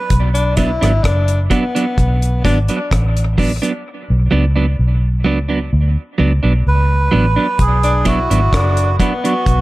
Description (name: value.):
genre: dub reggae.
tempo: 64 BPM.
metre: 4/4.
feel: straight.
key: B dorian.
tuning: A4 = 439 Hz.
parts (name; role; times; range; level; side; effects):
melodica; melody; 0.0-0.1, 6.7-9.6 s; E4 to B4; -20 LUFS; right 3 dB; dub echo.
vintage muted fingered electric bass; bass; 0.1-9.6 s; F#1 to D2; -14 LUFS; equal; none.
deep reggae drum kit; drums; 0.1-9.6 s; hi-hat, kick drum, rim click; -18 LUFS; equal; none.
warm tenor saxophone; second line; 0.3-9.6 s; B3 to E4; -21 LUFS; left 3 dB; dub echo.
clean electric guitar; accompaniment; 0.6-9.3 s; F#3 to D4; -19 LUFS; right 3 dB; dub echo.
room: light reverb, small room ambience.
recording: none.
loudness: -13 LUFS.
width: side -18 dB against mid.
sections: 0.0-9.6 A section.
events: break 0.0-3.9; part muted 3.9-7.6.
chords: 0.0 Bm.